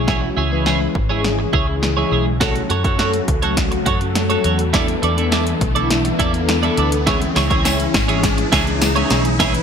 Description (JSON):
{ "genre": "dance-pop", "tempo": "103 BPM", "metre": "4/4", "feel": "straight", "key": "unclear", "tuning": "A4 = 440 Hz", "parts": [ { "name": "soft string machine", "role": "sustained chords", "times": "0.0-9.6 s", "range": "C#3 to F#4", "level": "-26 LUFS", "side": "left 2 dB", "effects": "phaser, ensemble chorus, sidechain pumping" }, { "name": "twelve-string electric guitar", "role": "riff", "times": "0.0-9.6 s", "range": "E4 to D5", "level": "-22 LUFS", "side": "right 6 dB", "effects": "wide subtle chorus" }, { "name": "vintage muted fingered electric bass", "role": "bass", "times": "0.0-9.6 s", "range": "G#1 to F#2", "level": "-22 LUFS", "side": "equal", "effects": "sidechain pumping" }, { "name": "riser", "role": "sound effects", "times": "1.1-9.6 s", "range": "none", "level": "-28 LUFS", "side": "left 1 dB", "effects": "none" }, { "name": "mellow synth brass", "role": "accompaniment", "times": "0.1-9.6 s", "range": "E3 to B4", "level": "-22 LUFS", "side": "left 2 dB", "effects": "chorus, sidechain pumping" }, { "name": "punchy analog drum machine", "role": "drums", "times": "0.1-9.6 s", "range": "hi-hat, kick drum, snare drum", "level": "-20 LUFS", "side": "equal", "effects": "gated reverb" }, { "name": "tambourine", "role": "percussion", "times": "7.4-9.5 s", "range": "none", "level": "-32 LUFS", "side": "left 11 dB", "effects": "none" } ], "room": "moderate plate reverb, RT60 1.9 s", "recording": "bright 1980s-style digital production", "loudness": "-15 LUFS", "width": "side -7 dB against mid", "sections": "0.0-9.6 A section", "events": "build-up 0.0-9.6; drum fill 0.0-9.6; riser 1.1-9.6", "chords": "0.0 C#m; 2.4 F#m; 4.7 E7sus4; 7.1 C#m" }